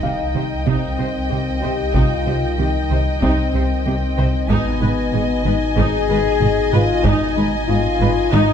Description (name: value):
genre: cinematic, hybrid orchestral and electronic film score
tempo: 94 BPM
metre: 4/4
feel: straight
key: C harmonic minor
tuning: A4 = 441 Hz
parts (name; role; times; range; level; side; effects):
- warm symphonic violin section; melody; 0.0-8.5 s; G5 to Ab5; -29 LUFS; left 1 dB; none
- warm symphonic violin section; second line; 0.0-8.5 s; Eb5; -27 LUFS; left 2 dB; none
- warm symphonic viola section; accompaniment; 0.0-8.5 s; Eb4 to C5; -27 LUFS; equal; none
- warm French horn section; sustained chords; 0.0-8.5 s; Cb4 to Ab4; -22 LUFS; left 7 dB; none
- warm trombone section; sustained chords; 0.0-8.5 s; Cb3 to Eb4; -29 LUFS; right 4 dB; none
- soft round pluck; arpeggios; 0.0-8.5 s; C3 to Ab4; -31 LUFS; right 4 dB; none
- smooth synth bass; riff; 0.0-8.5 s; C2 to Ab3; -26 LUFS; left 3 dB; none
- dark symphonic double bass section; bass; 0.0-8.4 s; Ab1 to C2; -24 LUFS; right 4 dB; none
- warm sub bass; bass; 0.0-8.5 s; Ab1 to C2; -24 LUFS; equal; none
- warm symphonic cello section; bass; 0.0-8.4 s; Ab2 to C3; -24 LUFS; right 2 dB; none
- impact; sound effects; 0.0-1.9 s; none; -38 LUFS; equal; none
- warm concert grand piano; texture; 0.0-8.5 s; Eb5 to F5; -30 LUFS; right 2 dB; none
- taiko ensemble; drums; 0.7-8.5 s; none; -24 LUFS; equal; none
room: light reverb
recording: none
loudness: -16 LUFS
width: side -8 dB against mid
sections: 0.0-8.5 A section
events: impact 0.0-1.9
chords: 0.0 Cm; 4.5 Abm